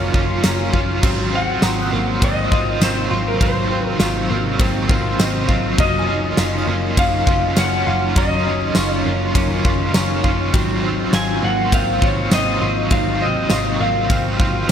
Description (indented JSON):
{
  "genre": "dream pop",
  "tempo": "101 BPM",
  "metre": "4/4",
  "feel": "straight",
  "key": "unclear",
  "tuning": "A4 = 440 Hz",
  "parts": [
    { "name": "electric slide guitar", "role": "melody", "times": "0.0-14.7 s", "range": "Bb4 to Ab5", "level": "-22 LUFS", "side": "left 1 dB", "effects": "wide subtle chorus, digital delay" },
    { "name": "cranked stack guitar", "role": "accompaniment", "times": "0.0-14.7 s", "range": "Ab2 to F4", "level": "-23 LUFS", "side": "right 3 dB", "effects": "overdrive, tremolo, ensemble chorus" },
    { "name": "shimmering ambient pad", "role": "sustained chords", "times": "0.0-14.7 s", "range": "C3 to F4", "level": "-26 LUFS", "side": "right 2 dB", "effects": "chorus, built-in reverb" },
    { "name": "direct-recorded clean electric guitar", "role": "arpeggios", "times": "0.0-14.7 s", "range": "Gb3 to F4", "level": "-25 LUFS", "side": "left 5 dB", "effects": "wide subtle chorus, digital delay" },
    { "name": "vintage muted picked electric bass", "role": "bass", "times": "0.0-14.7 s", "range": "Gb1 to Ab1", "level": "-23 LUFS", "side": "equal", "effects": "none" },
    { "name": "glassy synth bell", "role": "texture", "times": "0.0-14.7 s", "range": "Eb5 to Gb6", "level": "-33 LUFS", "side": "equal", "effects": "chorus, phaser, digital delay" },
    { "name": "huge arena drum kit", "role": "drums", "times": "0.1-14.7 s", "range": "crash cymbal, hi-hat, kick drum, ride cymbal, snare drum, tambourine", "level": "-20 LUFS", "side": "equal", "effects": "none" }
  ],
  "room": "light reverb, small room reverb",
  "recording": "bright 1980s-style digital production",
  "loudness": "-15 LUFS",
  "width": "side -8 dB against mid",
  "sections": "0.0-1.0 A section; 1.0-14.7 A section",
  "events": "none",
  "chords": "0.0 Ebm9/Gb; 1.0 Ab13; 5.8 Ebm9/Gb; 10.5 Ab13",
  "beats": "0.44 | 1.03 1.63 2.22 2.81 | 3.41 4.00 4.60 5.19 | 5.79 6.38 6.97 7.57 | 8.16 8.76 9.35 9.94 | 10.54 11.13 11.73 12.32 | 12.91 13.51 14.10 14.70"
}